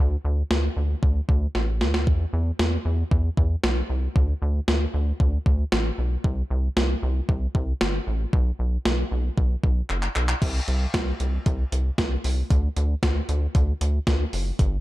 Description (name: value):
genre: synth-pop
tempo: 115 BPM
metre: 4/4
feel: straight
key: unclear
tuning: A4 = 440 Hz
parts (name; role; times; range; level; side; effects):
- rubbery square bass; bass; 0.0-14.8 s; F#1 to E2; -24 LUFS; equal; none
- clean 12-bit digital drum machine; drums; 0.5-14.7 s; crash cymbal, handclaps, hi-hat, kick drum, snare drum; -24 LUFS; equal; overdrive
room: little or no reverb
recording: dark, warm production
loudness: -21 LUFS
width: side -17 dB against mid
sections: 0.0-10.4 A section; 10.4-14.8 B section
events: drum fill 1.5-2.1, 9.9-10.4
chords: none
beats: 0.51 1.03 1.55 | 2.07 2.59 3.11 3.64 | 4.16 4.68 5.20 5.72 | 6.25 6.77 7.29 7.81 | 8.33 8.85 9.38 9.90 | 10.42 10.94 11.46 11.98 | 12.51 13.03 13.55 14.07 | 14.59